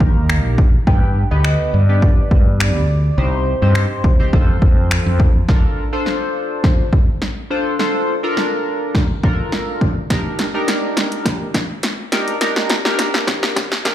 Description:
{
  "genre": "dance-pop",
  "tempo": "104 BPM",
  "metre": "4/4",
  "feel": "straight",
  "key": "Bb major",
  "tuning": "A4 = 440 Hz",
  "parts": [
    { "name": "warm velvety synth lead", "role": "melody", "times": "0.0-4.9 s", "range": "Bb4 to G5", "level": "-25 LUFS", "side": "equal", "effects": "chorus, ping-pong delay" },
    { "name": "chorused polysynth", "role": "accompaniment", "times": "0.0-13.9 s", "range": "D3 to C5", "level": "-21 LUFS", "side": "equal", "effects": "sidechain pumping" },
    { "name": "mellow fretless electric bass", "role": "bass", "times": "0.0-5.4 s", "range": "Bb1 to G2", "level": "-16 LUFS", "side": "equal", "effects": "sidechain pumping" },
    { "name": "punchy analog drum machine", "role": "drums", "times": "0.0-13.9 s", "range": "finger snaps, hi-hat, kick drum, snare drum", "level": "-16 LUFS", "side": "equal", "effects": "none" }
  ],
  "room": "light reverb",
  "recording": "played on a big sound system in a bare room, large studio reverb, high-pass filter",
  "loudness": "-14 LUFS",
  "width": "side -12 dB against mid",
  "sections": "0.0-5.5 A section; 5.5-13.9 B section",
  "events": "build-up 5.5-13.9; drum fill 5.5-13.9; filter sweep 5.5-13.9",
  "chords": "0.0 Eb; 0.9 G; 3.2 Cm; 4.3 F; 5.5 Bbmaj7; 10.1 Ebmaj7"
}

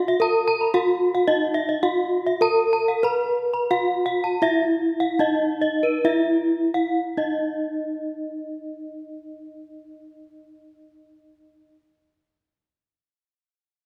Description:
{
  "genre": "gamelan",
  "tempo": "62-112 BPM",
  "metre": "4/4",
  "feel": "straight",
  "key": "Eb pelog",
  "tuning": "A4 = 439 Hz",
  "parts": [
    { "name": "gamelan-type bronze metallophone", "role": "melody", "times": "0.0-11.7 s", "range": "Eb4 to Cb5-40c", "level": "-24 LUFS", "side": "equal", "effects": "none" },
    { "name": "gamelan-type bronze metallophone", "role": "arpeggios", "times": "0.1-11.8 s", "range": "Cb5-40c to Cb6-40c", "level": "-27 LUFS", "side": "equal", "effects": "none" }
  ],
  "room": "wet scoring stage reverb, RT60 1.5 s",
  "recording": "none",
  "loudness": "-22 LUFS",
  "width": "mono",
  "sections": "0.0-7.0 A section; 7.0-13.8 B section",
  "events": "slowing down 1.3-7.0",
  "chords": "none"
}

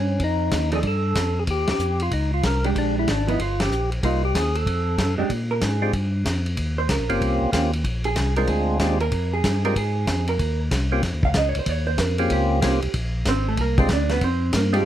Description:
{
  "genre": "soul jazz organ trio",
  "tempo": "188 BPM",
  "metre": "4/4",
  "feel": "swing 64% on 8ths",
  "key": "Bb mixolydian",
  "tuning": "A4 = 439 Hz",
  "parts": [
    { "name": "percussive tonewheel organ", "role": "melody", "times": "0.0-14.9 s", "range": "Ab3 to Bb4", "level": "-24 LUFS", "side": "equal", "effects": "slow rotary speaker, overdrive" },
    { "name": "tonewheel organ", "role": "bass", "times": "0.0-14.8 s", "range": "G1 to Bb2", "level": "-23 LUFS", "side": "equal", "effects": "overdrive, chorus vibrato, slow rotary speaker" },
    { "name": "warm soul drum kit", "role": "drums", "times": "0.2-14.8 s", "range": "hi-hat, kick drum, ride cymbal, snare drum", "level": "-26 LUFS", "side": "equal", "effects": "none" },
    { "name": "vintage hollow-body jazz guitar", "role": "accompaniment", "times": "0.7-14.9 s", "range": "F3 to F5", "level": "-26 LUFS", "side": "right 4 dB", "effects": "none" }
  ],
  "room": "light reverb",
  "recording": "dark, warm production",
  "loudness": "-20 LUFS",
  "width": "side -11 dB against mid",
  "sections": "0.0-5.3 A section; 5.3-14.9 B section",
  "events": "band accent 1.6, 3.5; hollow-body jazz guitar solo 5.3-14.9",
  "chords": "0.2 F9; 1.5 Eb13; 2.8 Bb6; 3.4 Gm7; 4.0 Cm7; 4.7 F; 5.3 Bb7(no3); 6.6 Eb13; 7.8 Bb13; 10.4 Eb13; 12.9 Bb13"
}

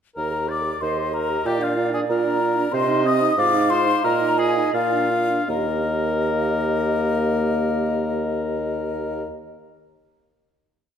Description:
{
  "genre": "quick classical-period movement for wind quintet",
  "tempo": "79-94 BPM",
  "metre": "2/4",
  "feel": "straight",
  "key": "Eb major",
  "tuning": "A4 = 440 Hz",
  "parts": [
    { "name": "mellow hollow concert flute", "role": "melody", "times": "0.2-9.3 s", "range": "Eb5 to Eb6", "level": "-25 LUFS", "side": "left 6 dB", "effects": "none" },
    { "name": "warm oboe", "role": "second line", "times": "0.2-9.3 s", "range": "F4 to Eb5", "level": "-27 LUFS", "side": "left 2 dB", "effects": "none" },
    { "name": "warm French horn", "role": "accompaniment", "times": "0.2-9.2 s", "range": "Bb3 to Bb4", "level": "-26 LUFS", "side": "equal", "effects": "none" },
    { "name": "mellow bassoon", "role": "bass", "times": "0.2-9.3 s", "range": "Eb2 to C3", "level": "-25 LUFS", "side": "right 4 dB", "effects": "none" },
    { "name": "dark clarinet", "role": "accompaniment", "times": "0.8-9.3 s", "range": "G4 to F5", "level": "-28 LUFS", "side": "right 7 dB", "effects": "none" }
  ],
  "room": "wet concert hall reverb, RT60 1.7 s",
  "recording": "none",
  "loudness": "-19 LUFS",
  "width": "side -8 dB against mid",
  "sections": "0.2-5.5 A section; 5.5-8.5 final chord",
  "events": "slowing down 2.1-5.5",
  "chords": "0.2 Eb; 1.5 Bb; 2.7 Cm; 3.4 Fm7/Ab; 4.0 Bb7sus4; 4.7 Bb; 5.5 Eb"
}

